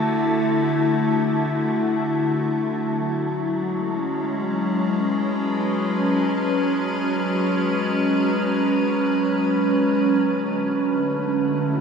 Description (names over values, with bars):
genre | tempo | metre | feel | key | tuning
ambient | free time | none | none | unclear | A4 = 440 Hz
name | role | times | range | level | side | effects
evolving wavetable pad | sustained chords | 0.0-11.8 s | D3 to B4 | -20 LUFS | equal | chorus, built-in reverb
wind-like tuned noise texture | texture | 0.0-10.3 s | A5 | -34 LUFS | right 1 dB | built-in reverb
room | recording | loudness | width
wet huge ambient reverb, RT60 7.9 s | none | -19 LUFS | side -6 dB against mid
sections
0.0-10.3 A section; 10.3-11.8 B section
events
fade-out on synth texture 0.0-10.3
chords
0.0 Dadd9; 2.7 F#7sus4; 10.3 Dadd9